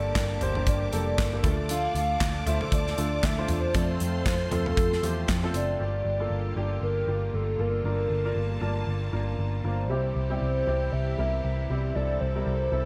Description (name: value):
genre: piano-driven pop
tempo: 117 BPM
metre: 4/4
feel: swing 56% on 16ths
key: unclear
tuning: A4 = 440 Hz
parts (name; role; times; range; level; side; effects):
- hollow clarinet-like synth lead; melody; 0.0-12.9 s; A4 to F5; -33 LUFS; equal; chorus
- clear upright piano; accompaniment; 0.0-12.9 s; G2 to A5; -36 LUFS; equal; analog chorus
- bright studio string section; sustained chords; 0.0-12.9 s; C3 to D6; -42 LUFS; equal; none
- picked steel-string acoustic guitar; riff; 0.0-5.8 s; F2 to A4; -38 LUFS; equal; lush chorus
- vintage muted picked electric bass; bass; 0.0-12.9 s; F1 to F2; -31 LUFS; equal; none
- modern studio drum kit; drums; 0.2-5.7 s; handclaps, hi-hat, kick drum, snare drum, toms; -30 LUFS; equal; none
room: light reverb, studio reverb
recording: none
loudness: -27 LUFS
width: mono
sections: 0.0-5.8 A section; 5.8-12.9 B section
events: none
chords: 0.0 Gmadd9; 1.4 Dm; 3.7 F; 5.8 Gm7; 9.9 C